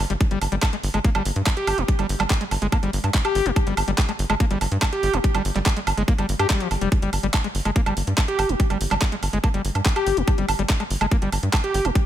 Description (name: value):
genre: psychedelic trance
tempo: 143 BPM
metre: 4/4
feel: straight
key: G phrygian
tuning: A4 = 440 Hz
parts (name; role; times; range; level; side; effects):
- tight sequencer bass; bass; 0.0-11.9 s; F1 to G2; -24 LUFS; equal; none
- garage drum kit; drums; 0.0-12.0 s; handclaps, hi-hat, woodblock; -26 LUFS; right 3 dB; overdrive, studio reverb
- screaming distorted acid line; riff; 0.1-11.9 s; F3 to G4; -26 LUFS; moving between left 7 dB and right 4 dB; distortion, chorus, auto-pan, sidechain pumping, digital delay
- electronic kick drum; drums; 0.2-12.0 s; none; -20 LUFS; equal; overdrive, studio reverb
room: digital ambience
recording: none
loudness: -19 LUFS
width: side -12 dB against mid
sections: 0.0-12.1 A section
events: none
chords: none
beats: | 0.21 0.62 1.04 1.46 | 1.88 2.30 2.72 3.14 | 3.56 3.98 4.40 4.82 | 5.24 5.66 6.08 6.50 | 6.92 7.34 7.76 8.18 | 8.60 9.02 9.44 9.86 | 10.28 10.70 11.12 11.53 | 11.95